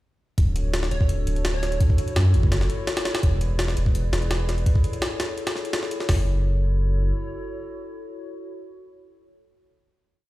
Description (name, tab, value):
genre	drum and bass, jungle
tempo	168 BPM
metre	4/4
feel	straight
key	F# minor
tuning	A4 = 443 Hz
part	warbly tape-like pad	sustained chords	0.4-9.7 s	D4 to D5	-33 LUFS	left 1 dB	chorus, built-in reverb, vintage 12-bit sampler grit
part	soft dub sub bass	bass	0.4-7.1 s	D1 to F#2	-22 LUFS	equal	none
part	jungle sampler-style drum kit	drums	0.4-6.2 s	hi-hat, kick drum, snare drum	-23 LUFS	equal	studio reverb
part	plucky unison lead	melody	0.9-1.8 s	C#5	-36 LUFS	right 3 dB	phaser, dub echo
room	little or no reverb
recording	played on a big sound system in a bare room, stone room reverb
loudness	-21 LUFS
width	side -17 dB against mid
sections	0.4-6.1 drop; 6.1-8.9 final chord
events	drop 0.4-6.1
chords	0.4 Dmaj7; 1.8 F#m7; 3.2 E7; 4.7 Amaj7; 6.1 F#m7